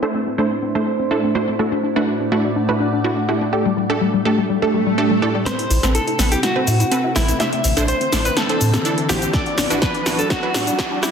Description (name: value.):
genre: progressive house.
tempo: 124 BPM.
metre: 4/4.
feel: straight.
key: A dorian.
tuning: A4 = 440 Hz.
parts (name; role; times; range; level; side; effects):
evolving wavetable pad; sustained chords; 0.0-11.1 s; A2 to D5; -25 LUFS; right 1 dB; chorus, built-in reverb, sidechain pumping.
tight sequenced synth; arpeggios; 0.0-11.1 s; G3 to C5; -24 LUFS; left 4 dB; chorus, vintage 12-bit sampler grit, sidechain pumping, ping-pong delay.
wide unison pluck; stabs; 0.0-11.1 s; A3 to C5; -21 LUFS; right 2 dB; sidechain pumping, ping-pong delay.
swell and riser; sound effects; 4.7-11.1 s; none; -27 LUFS; right 5 dB; none.
direct-recorded clean electric guitar; melody; 5.5-11.1 s; E4 to E5; -22 LUFS; equal; harmonic tremolo, ping-pong delay.
soft round pluck; second line; 5.5-11.1 s; E4 to E5; -31 LUFS; equal; none.
deep house drum kit; drums; 5.5-11.1 s; hi-hat, rim click, shaker, snare drum; -22 LUFS; equal; overdrive.
saturated sub bass; bass; 5.7-11.1 s; A1 to A2; -20 LUFS; equal; sidechain pumping.
electronic kick drum; drums; 9.3-10.9 s; none; -23 LUFS; equal; none.
room: moderate digital room reverb, RT60 1.2 s, digital ambience.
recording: dense, heavily limited modern master, high-pass filter, low-pass filter.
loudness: -16 LUFS.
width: side -7 dB against mid.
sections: 0.0-5.5 A section; 5.5-11.1 B section.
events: filter sweep on synth pluck 0.0-5.5; filter sweep on ambient pad 0.0-5.5; filter sweep 0.0-5.5; swell 4.7-5.5; build-up 5.5-11.1; drum fill 5.5-11.1.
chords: 0.0 Cadd9/A; 1.6 Dadd9/A; 3.5 Gsus2/A; 5.5 Amadd9; 7.4 Cadd9/A; 9.3 Dadd9/A.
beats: 0.14 0.62 1.11 | 1.59 2.08 2.56 3.04 | 3.53 4.01 4.50 4.98 | 5.46 5.95 6.43 6.92 | 7.40 7.88 8.37 8.85 | 9.34 9.82 10.30 10.79.